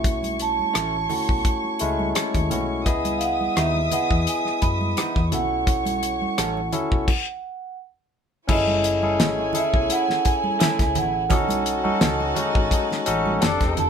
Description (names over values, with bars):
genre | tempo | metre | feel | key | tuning
lush 1970s-style soul | 85 BPM | 4/4 | swing 54% on 16ths | unclear | A4 = 440 Hz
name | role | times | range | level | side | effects
vibraphone with soft mallets | melody | 0.0-13.9 s | D#5 to B5 | -25 LUFS | right 5 dB | none
warm chamber violin section | second line | 0.0-13.9 s | D4 to D#6 | -31 LUFS | left 1 dB | none
barky tine electric piano | accompaniment | 0.0-13.9 s | G#3 to D#5 | -26 LUFS | left 4 dB | overdrive
hollow-body short-scale fingered electric bass | bass | 0.0-13.9 s | E1 to F#2 | -29 LUFS | equal | none
damped 70s drum kit | drums | 0.0-13.9 s | crash cymbal, hi-hat, kick drum, rim click, snare drum | -23 LUFS | left 1 dB | none
congas | percussion | 0.0-13.9 s | none | -32 LUFS | right 5 dB | none
electric guitar through a small old amp | riff | 0.7-13.6 s | E3 to A4 | -30 LUFS | right 6 dB | none
clear horn section | stabs | 9.5-13.9 s | F#3 to E4 | -30 LUFS | left 2 dB | none
room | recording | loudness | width
moderate studio reverb, RT60 0.6 s | band playing live in one room | -20 LUFS | side -7 dB against mid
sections
0.0-8.5 A section; 8.5-13.9 B section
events
stop 7.1-8.5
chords
0.0 B9sus4; 2.9 C#m9; 5.3 B9sus4; 8.5 F#m9; 11.3 B9